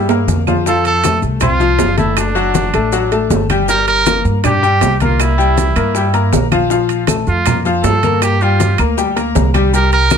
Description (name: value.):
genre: latin, salsa.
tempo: 159 BPM.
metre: 4/4.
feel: straight.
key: F major.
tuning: A4 = 440 Hz.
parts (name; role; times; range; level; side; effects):
bright trumpet; melody; 0.0-10.2 s; D4 to Bb4; -17 LUFS; right 4 dB; none.
bright concert grand piano; accompaniment; 0.0-10.2 s; F3 to D6; -16 LUFS; left 5 dB; none.
upright bass; bass; 0.0-10.2 s; Gb1 to G2; -16 LUFS; right 1 dB; none.
bongos; percussion; 0.1-10.2 s; none; -25 LUFS; left 7 dB; none.
congas; percussion; 0.1-10.2 s; none; -21 LUFS; left 2 dB; none.
maracas; percussion; 0.1-10.2 s; none; -28 LUFS; right 8 dB; none.
timbales; percussion; 0.1-10.2 s; none; -21 LUFS; right 10 dB; none.
claves; percussion; 0.5-10.2 s; none; -27 LUFS; right 6 dB; none.
room: light reverb.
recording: close, detailed microphones.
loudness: -11 LUFS.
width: side -7 dB against mid.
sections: 0.7-10.2 A section.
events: drum fill 0.0-0.7.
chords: 0.0 C7 (rootless); 0.7 F; 2.2 D/F#; 3.7 Gm; 5.2 C7; 6.7 Bb5; 8.2 Gm7.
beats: 0.28 | 0.66 1.04 1.42 1.79 | 2.17 2.55 2.93 3.31 | 3.69 4.06 4.44 4.82 | 5.20 5.58 5.95 6.33 | 6.71 7.09 7.47 7.84 | 8.22 8.60 8.98 9.36 | 9.73 10.11.